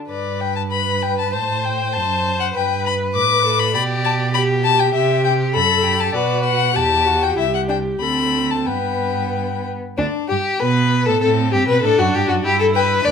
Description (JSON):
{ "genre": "quick classical-period movement for string quartet", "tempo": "98 BPM", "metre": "2/4", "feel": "rubato", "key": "G major", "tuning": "A4 = 440 Hz", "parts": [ { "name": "warm violin", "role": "melody", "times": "0.1-12.9 s", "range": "D4 to D6", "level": "-20 LUFS", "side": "left 8 dB", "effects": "none" }, { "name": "rich violin", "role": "second line", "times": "0.1-13.1 s", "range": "B3 to D5", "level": "-21 LUFS", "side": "left 3 dB", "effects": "none" }, { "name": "rich cello", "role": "bass", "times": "0.1-13.1 s", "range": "C2 to C3", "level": "-23 LUFS", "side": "right 5 dB", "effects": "none" }, { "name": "rich viola", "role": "accompaniment", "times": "0.7-13.1 s", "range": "B3 to D5", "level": "-23 LUFS", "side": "right 2 dB", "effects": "none" } ], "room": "light reverb", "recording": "minimal, uncompressed stereo recording", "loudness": "-16 LUFS", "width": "side -6 dB against mid", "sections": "0.1-10.0 A section; 10.0-13.1 A section", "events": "none", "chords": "0.1 G; 1.3 F#dim; 2.6 G; 3.8 G/B; 4.9 C; 5.5 F#madd11; 6.2 Bm; 6.8 Em; 7.4 C; 8.0 D5; 8.7 G; 11.2 D7; 12.4 G5" }